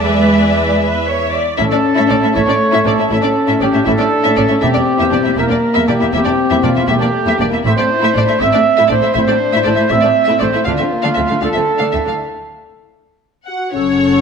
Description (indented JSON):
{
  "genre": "cinematic",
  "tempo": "79 BPM (dotted quarters)",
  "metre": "6/8",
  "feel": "straight",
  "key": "unclear",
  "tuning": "A4 = 439 Hz",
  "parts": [
    { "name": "warm symphonic violin section", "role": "melody", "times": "0.0-14.2 s", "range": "C#5 to F#5", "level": "-20 LUFS", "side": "left 2 dB", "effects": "none" },
    { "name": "warm symphonic violin section", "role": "second line", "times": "0.0-14.2 s", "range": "C4 to F#5", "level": "-23 LUFS", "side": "left 2 dB", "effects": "none" },
    { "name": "rich symphonic viola section", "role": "accompaniment", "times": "0.0-14.2 s", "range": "A3 to D5", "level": "-22 LUFS", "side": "right 1 dB", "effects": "none" },
    { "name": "warm French horn section", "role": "sustained chords", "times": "0.0-14.2 s", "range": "A3 to D5", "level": "-18 LUFS", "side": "left 4 dB", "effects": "none" },
    { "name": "dark symphonic cello section", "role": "bass", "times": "0.0-14.2 s", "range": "E2 to G#3", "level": "-20 LUFS", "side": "right 2 dB", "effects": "none" },
    { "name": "warm symphonic double bass section", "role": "bass", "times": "0.0-14.2 s", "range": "E1 to E2", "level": "-22 LUFS", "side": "right 3 dB", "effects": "none" },
    { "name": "mellow trumpet section", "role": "stabs", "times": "1.6-12.2 s", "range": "F4 to E5", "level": "-16 LUFS", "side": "right 3 dB", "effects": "none" }
  ],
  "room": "wet scoring stage reverb, RT60 1.4 s",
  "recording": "none",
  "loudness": "-11 LUFS",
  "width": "side -6 dB against mid",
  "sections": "0.0-1.6 A section; 1.6-13.8 B section",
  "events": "break 12.2-13.8",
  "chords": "0.0 E7; 1.6 A; 4.6 Edim; 7.6 Am; 10.7 Dm; 12.2 N.C.",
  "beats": "| 0.04 0.81 | 1.59 2.35 | 3.11 3.86 | 4.62 5.38 | 6.13 6.88 | 7.65 8.40 | 9.15 9.91 | 10.66 11.43 | 12.20 12.97 | 13.75"
}